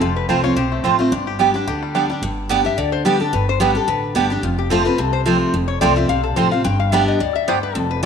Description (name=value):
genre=bluegrass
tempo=217 BPM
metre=4/4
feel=swing 54% on 8ths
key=G mixolydian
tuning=A4 = 440 Hz
part: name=bluegrass banjo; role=melody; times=0.0-2.2, 6.9-7.6 s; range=G3 to G4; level=-28 LUFS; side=left 9 dB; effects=none
part: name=lap resonator guitar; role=melody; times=0.0-8.1 s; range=F4 to G5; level=-22 LUFS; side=left 10 dB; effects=none
part: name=picked steel-string acoustic guitar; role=accompaniment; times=0.0-8.1 s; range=F2 to G4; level=-19 LUFS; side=equal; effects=none
part: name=upright bass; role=bass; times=0.0-8.1 s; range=F1 to D2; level=-24 LUFS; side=equal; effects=none
part: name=mandolin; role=stabs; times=0.3-8.1 s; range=B3 to A5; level=-22 LUFS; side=right 10 dB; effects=none
room=moderate echo chamber reverb, RT60 1.8 s, studio ambience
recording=1960s-style stereo with parts hard left and right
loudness=-16 LUFS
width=side -7 dB against mid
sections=0.0-2.2 A section; 2.2-8.1 A section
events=none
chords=0.0 F; 1.1 G; 4.4 F; 6.6 G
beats=| 0.01 0.29 0.57 0.84 | 1.12 1.40 1.67 1.95 | 2.22 2.50 2.78 3.05 | 3.33 3.60 3.88 4.16 | 4.43 4.71 4.99 5.26 | 5.54 5.82 6.09 6.37 | 6.65 6.92 7.20 7.48 | 7.76 8.03